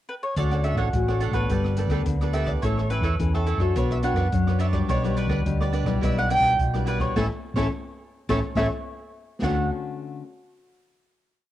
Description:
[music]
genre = samba and choro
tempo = 106 BPM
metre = 4/4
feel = straight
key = D major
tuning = A4 = 435 Hz
[part]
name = mandolin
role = melody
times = 0.1-9.7 s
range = A4 to G5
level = -28 LUFS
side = right 1 dB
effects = cassette tape
[part]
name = cavaquinho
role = accompaniment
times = 0.4-9.7 s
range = D4 to F#5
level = -32 LUFS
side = right 8 dB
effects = cassette tape
[part]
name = nylon-string guitar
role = accompaniment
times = 0.4-10.2 s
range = A2 to C#5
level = -29 LUFS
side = left 6 dB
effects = cassette tape
[part]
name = hollow-body short-scale fingered electric bass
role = bass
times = 0.4-9.7 s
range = G1 to F#2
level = -25 LUFS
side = equal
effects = none
[part]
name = open jazz drum kit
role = drums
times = 0.4-9.6 s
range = crash cymbal, hi-hat, kick drum, rim click, snare drum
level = -30 LUFS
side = equal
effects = cassette tape
[sound]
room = moderate spring reverb, RT60 1.7 s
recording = home recording on cassette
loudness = -21 LUFS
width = side -13 dB against mid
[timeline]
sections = 0.0-0.4 pickup bar; 0.4-9.4 A section; 9.4-11.5 final chord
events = band accent 7.2-9.4; drum fill 8.3-9.4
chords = 0.4 Dmaj7; 1.5 Gadd9; 2.6 A; 3.8 Bmadd9; 4.9 Em7/B; 7.2 A; 9.4 Dmaj7

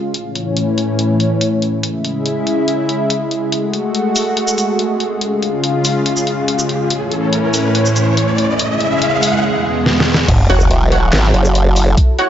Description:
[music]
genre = heavy wobble dubstep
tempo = 142 BPM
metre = 4/4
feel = half-time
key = F# minor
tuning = A4 = 440 Hz
[part]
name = lush unison pad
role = sustained chords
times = 0.0-12.3 s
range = E2 to A4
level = -16 LUFS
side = equal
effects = chorus, sidechain pumping
[part]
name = dubstep drum kit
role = drums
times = 0.1-12.3 s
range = crash cymbal, handclaps, hi-hat, shaker, snare drum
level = -19 LUFS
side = left 1 dB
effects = none
[part]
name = riser and sub drop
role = sound effects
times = 4.7-12.0 s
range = none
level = -20 LUFS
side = equal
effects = none
[part]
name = formant-sweep wobble bass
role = bass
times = 10.3-12.0 s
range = E1 to F#1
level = -13 LUFS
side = equal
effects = chorus, overdrive
[part]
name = electronic kick drum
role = drums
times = 10.3-12.1 s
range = none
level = -12 LUFS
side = equal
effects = overdrive
[part]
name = orchestra-hit-like synth stab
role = stabs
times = 10.5-12.3 s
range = F#4 to F#5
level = -19 LUFS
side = right 2 dB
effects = built-in reverb, tape echo
[part]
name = formant-sweep wobble bass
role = bass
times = 10.5-11.3 s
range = F#1 to G#1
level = -12 LUFS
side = equal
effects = chorus, overdrive
[sound]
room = light reverb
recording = dark, warm production, nothing above 7.7 kHz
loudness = -13 LUFS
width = side -10 dB against mid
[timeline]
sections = 0.0-10.3 A section; 10.3-12.3 B section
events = build-up 0.0-10.3; filter sweep on analog synth pad 0.0-10.3; riser 4.7-9.4; drum fill 9.9-10.3; drop 10.3-12.3; impact 10.3-12.0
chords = 0.1 A; 1.8 C#m; 3.5 F#madd9; 5.2 C#; 6.9 A; 8.6 C#m; 9.4 E; 10.3 F#m7

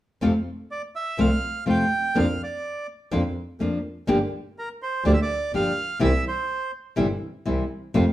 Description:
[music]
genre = tango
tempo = 124 BPM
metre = 4/4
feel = rubato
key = F major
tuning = A4 = 440 Hz
[part]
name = nylon-string guitar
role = accompaniment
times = 0.2-8.0 s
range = C3 to G4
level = -24 LUFS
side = left 1 dB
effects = none
[part]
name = clear double bass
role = bass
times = 0.2-8.1 s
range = G1 to F2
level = -25 LUFS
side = right 1 dB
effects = none
[part]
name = bandoneon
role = melody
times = 0.7-6.7 s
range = Bb4 to G5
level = -27 LUFS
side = right 3 dB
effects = none
[sound]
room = wet studio reverb, RT60 0.8 s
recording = band playing live in one room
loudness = -22 LUFS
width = side -14 dB against mid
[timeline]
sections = 0.2-8.1 A section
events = none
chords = 0.2 F; 2.2 Bb/F; 4.1 Gm7; 6.0 C

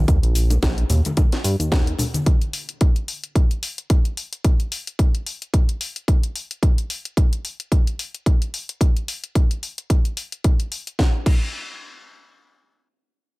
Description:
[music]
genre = nu-disco, nu disco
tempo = 110 BPM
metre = 4/4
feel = swing 56% on 16ths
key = unclear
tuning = A4 = 438 Hz
[part]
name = chorused synth bass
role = bass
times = 0.0-1.9 s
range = Bb1 to G2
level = -18 LUFS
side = equal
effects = tube saturation
[part]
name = electronic kick drum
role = drums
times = 0.1-11.4 s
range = none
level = -17 LUFS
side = equal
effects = none
[part]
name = house drum kit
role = drums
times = 0.1-11.4 s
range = crash cymbal, hi-hat, shaker, snare drum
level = -28 LUFS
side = left 2 dB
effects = none
[part]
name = bongos and congas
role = percussion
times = 0.5-2.2 s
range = none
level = -26 LUFS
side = left 1 dB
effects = none
[sound]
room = little or no reverb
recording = none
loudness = -19 LUFS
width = side -23 dB against mid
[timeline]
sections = 0.0-11.0 A section; 11.0-13.4 B section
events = none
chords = none

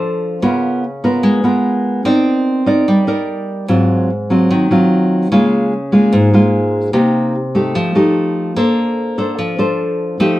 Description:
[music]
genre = bossa nova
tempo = 147 BPM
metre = 4/4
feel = straight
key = Bb major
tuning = A4 = 440 Hz
[part]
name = nylon-string guitar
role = solo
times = 0.0-10.4 s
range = Ab2 to D5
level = -12 LUFS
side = equal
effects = none
[sound]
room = moderate studio reverb, RT60 0.6 s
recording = band playing live in one room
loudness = -12 LUFS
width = side -16 dB against mid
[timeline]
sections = 0.0-10.4 A section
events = none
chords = 0.4 Db6; 2.1 Cm9; 3.7 Ab6; 5.3 Db6; 6.9 Cm7; 7.8 F9; 8.6 Bbmaj9

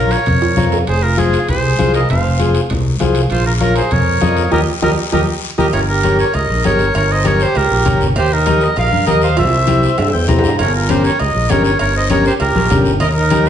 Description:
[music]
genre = latin, cumbia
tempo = 198 BPM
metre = 4/4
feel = straight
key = unclear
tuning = A4 = 440 Hz
[part]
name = clear oboe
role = melody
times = 0.0-13.5 s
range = Ab4 to F5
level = -18 LUFS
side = equal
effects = none
[part]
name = warm trumpet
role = second line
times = 0.0-13.5 s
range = Eb4 to C5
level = -22 LUFS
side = right 4 dB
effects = slapback echo
[part]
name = combo organ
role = accompaniment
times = 0.0-13.5 s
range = Db4 to Bb5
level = -19 LUFS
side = left 4 dB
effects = none
[part]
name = modern bright fingered electric bass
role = bass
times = 0.0-13.5 s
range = F1 to G2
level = -17 LUFS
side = equal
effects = none
[part]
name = guiro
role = percussion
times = 0.1-13.5 s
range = none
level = -29 LUFS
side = left 5 dB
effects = none
[part]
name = timbales and cowbell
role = percussion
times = 0.1-13.5 s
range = none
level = -25 LUFS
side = right 4 dB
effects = none
[part]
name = congas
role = percussion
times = 0.3-13.5 s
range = none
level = -20 LUFS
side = left 2 dB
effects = none
[sound]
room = wet large studio reverb, RT60 0.9 s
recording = heard from further back in the room, nothing above 10.7 kHz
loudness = -12 LUFS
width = side -9 dB against mid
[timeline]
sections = 0.0-5.7 A section; 5.7-13.5 B section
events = drum fill 0.4-0.9, 5.3-5.7, 9.4-10.6; band accent 4.5-5.7; transistor combo organ fill 9.7-10.6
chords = 0.0 Bbm; 0.9 Fm; 3.3 Bbm; 4.5 Eb; 5.7 Gdim; 8.2 Eb; 9.4 C; 10.6 Gdim

